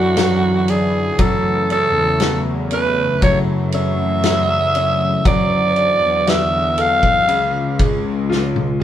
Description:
pop ballad; 59 BPM; 4/4; straight; A4 = 440 Hz
raspy alto saxophone; melody; 0.0-7.8 s; F#4 to E#5; -17 LUFS; right 1 dB
bright grand piano; accompaniment; 0.0-8.8 s; C#3 to A4; -24 LUFS; left 3 dB
warm analog pad; sustained chords; 0.0-8.8 s; C#3 to E#4; -23 LUFS; left 2 dB; chorus
rich symphonic cello section; bass; 0.0-8.8 s; C#2 to F#2; -22 LUFS; equal
loose indie drum kit; drums; 0.2-8.8 s; kick drum, ride cymbal, snare drum, toms; -20 LUFS; equal
moderate studio reverb, RT60 0.7 s; band playing live in one room; -14 LUFS; side -11 dB against mid
0.0-8.8 A section
drum fill 8.3-8.8
0.0 Dadd9; 1.2 A; 5.3 Dadd9; 7.3 C#

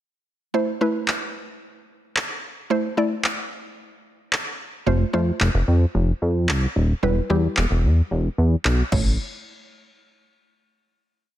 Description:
dance-pop; 111 BPM; 4/4; straight; A minor; A4 = 437 Hz
mallet-like synth pluck; accompaniment; 0.5-9.2 s; G3 to D5; -24 LUFS; right 1 dB; chorus, sidechain pumping
punchy analog drum machine; drums; 1.1-9.0 s; crash cymbal, handclaps, kick drum; -25 LUFS; equal
chorused synth bass; bass; 4.9-9.2 s; D#1 to F2; -18 LUFS; equal; sidechain pumping
light reverb, digital ambience; -19 LUFS; side -13 dB against mid
0.5-9.2 verse; 9.2-11.4 final hit
0.5 A5; 4.9 F; 7.0 Em; 8.9 A; 9.2 N.C.

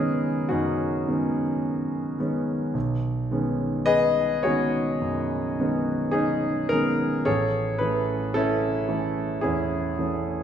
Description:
classical, impressionist solo piano; 53 BPM; 4/4; rubato; A4 = 439 Hz
clear concert grand piano; solo; 0.0-10.4 s; A1 to D#5; -22 LUFS; equal
wet recital hall reverb, RT60 1.4 s; recorded in a church or concert hall; -22 LUFS; side -9 dB against mid
0.0-10.4 A section
0.0 C#9sus4/F#; 2.7 B69; 7.3 Amaj7

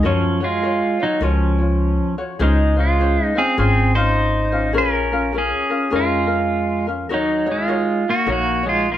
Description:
Hawaiian; 102 BPM; 4/4; swing 62% on 8ths; Db major; A4 = 439 Hz
pedal steel guitar; melody; 0.0-9.0 s; F3 to C5; -18 LUFS; right 1 dB
ukulele; accompaniment; 0.0-9.0 s; Db4 to Db5; -24 LUFS; left 3 dB
upright bass; bass; 0.0-9.0 s; Ab1 to Gb2; -21 LUFS; equal
moderate studio reverb, RT60 0.8 s; band playing live in one room; -16 LUFS; side -12 dB against mid
0.0-9.0 A section
0.0 Gbmaj7; 2.4 Dbmaj7; 4.7 Bbm7; 7.1 Ebm7

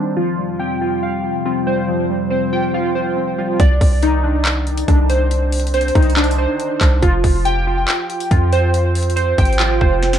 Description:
hip hop, trap; 140 BPM; 4/4; half-time; C minor; A4 = 440 Hz
warbly lo-fi synth keys; accompaniment; 0.0-3.6 s; Eb3 to F5; -20 LUFS; left 1 dB; chorus, low-pass filter
warbly tape-like pad; sustained chords; 0.0-3.6 s; F2 to D5; -27 LUFS; left 5 dB; chorus, built-in reverb, low-pass filter
warbly lo-fi synth keys; arpeggios; 0.0-10.2 s; D4 to G5; -19 LUFS; right 1 dB; chorus, low-pass filter, tape echo
hard-hitting 808-style bass; bass; 3.6-10.2 s; F1 to F2; -17 LUFS; equal
trap drum kit; drums; 3.6-10.2 s; handclaps, hi-hat, kick drum, snare drum; -17 LUFS; equal; overdrive, vintage 12-bit sampler grit
light reverb; -14 LUFS; side -9 dB against mid
0.0-3.6 A section; 3.6-10.2 B section
drum fill 10.0
0.2 Fsus2; 3.6 Cmadd9; 7.0 Fsus2

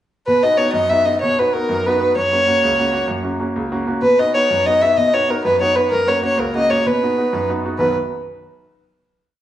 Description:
celtic folk, Celtic slide; 128 BPM (dotted quarters); 12/8; straight; B major; A4 = 440 Hz
dark fiddle; melody; 0.3-7.9 s; A#4 to E5; -15 LUFS; equal
bright grand piano; accompaniment; 0.3-8.0 s; B1 to F#4; -21 LUFS; right 1 dB
wet large studio reverb, RT60 1.2 s; band playing live in one room, nothing above 10.8 kHz; -15 LUFS; side -12 dB against mid
0.3-7.8 A section; 7.8-9.4 final chord
0.3 B; 2.2 F#; 4.0 B; 5.9 F#; 6.8 B

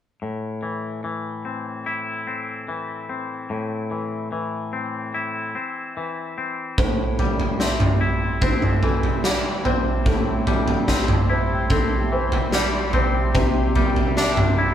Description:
post-rock; 73 BPM; 4/4; straight; A minor; A4 = 439 Hz
twangy electric guitar; arpeggios; 0.2-14.7 s; A2 to E4; -25 LUFS; left 3 dB
lush unison pad; sustained chords; 6.8-14.7 s; G4 to D6; -32 LUFS; right 1 dB; chorus
felt-muted upright piano; arpeggios; 6.8-14.7 s; A4 to E5; -30 LUFS; right 2 dB
huge arena drum kit; drums; 6.8-14.6 s; kick drum, snare drum, toms; -20 LUFS; right 1 dB
moderate stone room reverb, RT60 0.9 s; band playing live in one room; -20 LUFS; side -10 dB against mid
0.2-6.8 A section; 6.8-14.7 B section
0.2 Am; 6.8 Am7; 13.4 Cadd9

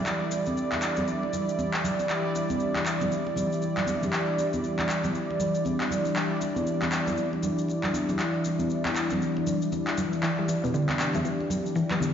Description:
afro house; 118 BPM; 4/4; swing 60% on 16ths; E minor; A4 = 440 Hz
warm analog pad; sustained chords; 0.0-12.1 s; E3 to A4; -30 LUFS; left 2 dB; wide subtle chorus
mellow synth brass; stabs; 0.0-12.1 s; G3 to D5; -30 LUFS; right 2 dB; chorus, vintage 12-bit sampler grit, digital delay
electronic handclaps; drums; 0.1-12.0 s; -32 LUFS; left 1 dB; overdrive, studio reverb
cabasa; percussion; 0.1-12.1 s; -42 LUFS; left 5 dB
congas; percussion; 0.3-12.1 s; -32 LUFS; right 1 dB
mallet-like synth pluck; arpeggios; 10.2-12.1 s; B2 to B3; -29 LUFS; equal; chorus, phaser, digital delay
moderate lush hall reverb, RT60 1.8 s; played on a big sound system in a bare room, stone room reverb, nothing above 7.5 kHz; -25 LUFS; side -8 dB against mid
0.0-12.1 A section
filter sweep on analog polysynth 0.0-12.1; filter sweep on analog synth pad 0.0-12.1
0.0 Em7

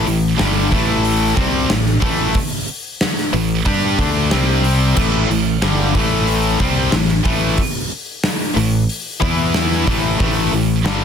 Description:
hard rock; 92 BPM; 4/4; straight; A minor; A4 = 441 Hz
cranked stack guitar; riff; 0.0-11.0 s; G2 to G4; -20 LUFS; left 10 dB; overdrive
scooped high-gain guitar; riff; 0.0-11.0 s; G2 to G4; -22 LUFS; right 10 dB; distortion
tight distorted guitar; riff; 0.0-11.0 s; G2 to G4; -22 LUFS; equal; distortion
fingered electric bass; bass; 0.0-11.0 s; G1 to G2; -20 LUFS; right 1 dB
gated 80s drum kit; drums; 0.1-11.0 s; crash cymbal, hi-hat, kick drum, snare drum; -20 LUFS; equal
light reverb, studio reverb; dense, heavily limited modern master; -14 LUFS; side -7 dB against mid
0.0-11.0 A section
0.0 Am; 4.3 C5; 5.0 Am; 9.2 E5; 9.9 A5

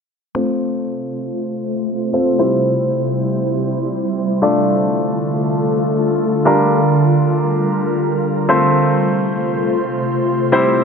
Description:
pop; free time; A4 = 440 Hz
clear baby grand piano; accompaniment; 0.3-10.8 s; G3 to D5; -18 LUFS; equal; low-pass filter
glassy FM pad; sustained chords; 1.0-10.8 s; C3 to C5; -17 LUFS; equal; ensemble chorus, built-in reverb, low-pass filter
wet lush hall reverb, RT60 2.5 s; -15 LUFS; side -6 dB against mid
0.4-10.8 A section
filter sweep 0.4-10.8
0.4 F; 2.4 C; 4.4 Dm; 6.5 Gm7; 8.5 F

